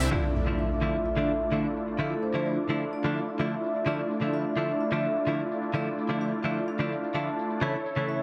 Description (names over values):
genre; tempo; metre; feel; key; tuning
EDM, festival progressive house; 128 BPM; 4/4; straight; D minor; A4 = 439 Hz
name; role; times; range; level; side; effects
lush unison pad; sustained chords; 0.0-8.2 s; D3 to A4; -41 LUFS; equal; none
supersaw chords; riff; 0.0-8.2 s; A3 to E5; -33 LUFS; equal; low-pass filter, tape echo
big-room dance drum kit; drums; 0.0-8.2 s; crash cymbal, hi-hat, tambourine; -46 LUFS; equal; overdrive, low-pass filter on hats, low-pass filter on cymbals, low-pass filter on perc, low-pass filter on snare
vibraphone with soft mallets; melody; 0.1-8.2 s; A4 to A5; -36 LUFS; equal; tape echo
direct-recorded clean electric guitar; accompaniment; 0.1-8.2 s; C#3 to E4; -34 LUFS; equal; none
impact; sound effects; 0.1-2.0 s; none; -34 LUFS; equal; none
room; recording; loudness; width
moderate digital room reverb, RT60 1.2 s; none; -29 LUFS; mono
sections
0.1-8.2 A section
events
impact 0.1-2.0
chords
0.1 Dmadd9; 7.6 A